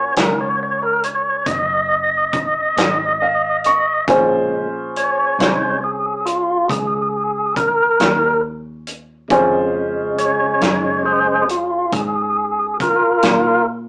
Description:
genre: slow blues.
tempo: 46 BPM (dotted quarters).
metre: 12/8.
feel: straight.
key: Bb minor.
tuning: A4 = 441 Hz.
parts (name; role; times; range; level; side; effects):
warm upright piano; accompaniment; 0.0-13.9 s; Db4 to Db6; -19 LUFS; equal; none.
tonewheel organ; sustained chords; 0.0-13.7 s; Db3 to Eb5; -16 LUFS; equal; slow rotary speaker.
vintage muted fingered electric bass; bass; 0.0-13.9 s; Gb1 to Bb2; -28 LUFS; equal; none.
natural country drum kit; drums; 0.2-13.4 s; hi-hat, kick drum, snare drum; -20 LUFS; equal; none.
room: wet studio ambience, RT60 0.5 s.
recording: rough rehearsal-room recording, small speaker sound.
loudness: -15 LUFS.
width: side -24 dB against mid.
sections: 0.0-13.9 A section.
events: tonewheel organ solo 0.0-13.9; upright piano fill 2.8-4.1.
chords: 0.0 Ebm7; 4.1 Bbm7.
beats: 0.17 1.47 2.78 | 4.08 5.39 6.70 8.01 | 9.31 10.62 11.93 13.24.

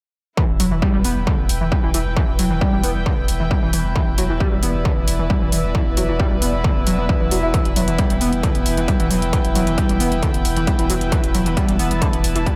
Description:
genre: driving peak-time techno.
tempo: 134 BPM.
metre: 4/4.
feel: straight.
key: E minor.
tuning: A4 = 439 Hz.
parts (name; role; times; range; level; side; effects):
overdriven synth lead; riff; 0.4-12.5 s; D3 to E4; -25 LUFS; equal; distortion, tube saturation, subtle chorus, sidechain pumping, analog delay.
deep dark ambient pad; drone; 2.1-12.6 s; E3 to B3; -31 LUFS; equal; chorus, built-in reverb, sidechain pumping.
electronic kick drum; drums; 0.4-12.6 s; none; -22 LUFS; equal; distortion, overdrive.
warm studio string section; texture; 0.4-12.6 s; E4 to A5; -29 LUFS; equal; sidechain pumping.
warm sub bass; bass; 0.5-12.5 s; E1; -25 LUFS; equal; overdrive, sidechain pumping, low-pass filter.
electronic hi-hat; drums; 0.6-12.6 s; none; -29 LUFS; equal; overdrive.
room: moderate lush hall reverb, RT60 1.7 s, digital ambience.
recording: dreamy mix soaked in reverb.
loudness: -19 LUFS.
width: mono.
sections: 0.4-12.6 A section.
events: none.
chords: 0.4 Em.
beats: | 0.37 0.82 1.27 1.72 | 2.17 2.61 3.06 3.51 | 3.96 4.40 4.85 5.30 | 5.75 6.20 6.64 7.09 | 7.54 7.99 8.43 8.88 | 9.33 9.78 10.22 10.67 | 11.12 11.57 12.02 12.46.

